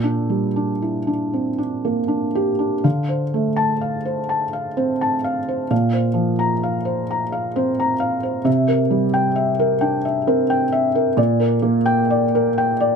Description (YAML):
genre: neoclassical minimalist piano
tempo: 43 BPM (dotted quarters)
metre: 6/8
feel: uneven beats, rubato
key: D minor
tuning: A4 = 440 Hz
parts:
  - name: felt-muted upright piano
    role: solo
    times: 0.0-13.0 s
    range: Bb2 to Bb5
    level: -17 LUFS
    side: equal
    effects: none
room: light reverb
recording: close, detailed microphones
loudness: -17 LUFS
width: side -6 dB against mid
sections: 0.0-2.8 A section; 2.8-13.0 A section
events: none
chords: 0.0 Gm/Bb; 2.8 Dm7; 5.7 Bbsus2; 8.5 C7; 11.2 Gm/Bb